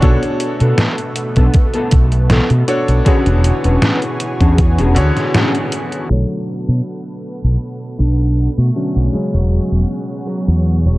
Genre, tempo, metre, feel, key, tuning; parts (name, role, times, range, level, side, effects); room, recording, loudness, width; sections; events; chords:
vaporwave; 79 BPM; 4/4; swing 53% on 16ths; B dorian; A4 = 440 Hz
bright electric grand piano; accompaniment; 0.0-11.0 s; C#3 to C#5; -22 LUFS; left 1 dB; wide subtle chorus, tape echo
lush unison pad; sustained chords; 0.0-11.0 s; B2 to F#5; -25 LUFS; right 1 dB; chorus
mellow electric guitar; riff; 0.0-5.8 s; B3 to B4; -21 LUFS; left 1 dB; ensemble chorus, tape echo
mellow fretless electric bass; bass; 0.0-11.0 s; E1 to B2; -13 LUFS; equal; tube saturation
detuned 8-bit digital drum machine; drums; 0.0-6.1 s; hi-hat, snare drum; -19 LUFS; equal
electronic kick drum; drums; 0.0-4.7 s; -13 LUFS; equal; overdrive
bluesy overdriven lead guitar; melody; 8.0-11.0 s; F#3 to D4; -23 LUFS; right 1 dB; distortion, tape echo
light reverb; echo-heavy mix, cassette tape, low-pass filter; -13 LUFS; side -19 dB against mid
0.0-6.1 A section; 6.1-11.0 B section
band accent 5.3-5.7; filter sweep 6.1-11.0
0.0 Bm7; 3.1 E13; 6.1 Bm7; 9.1 E69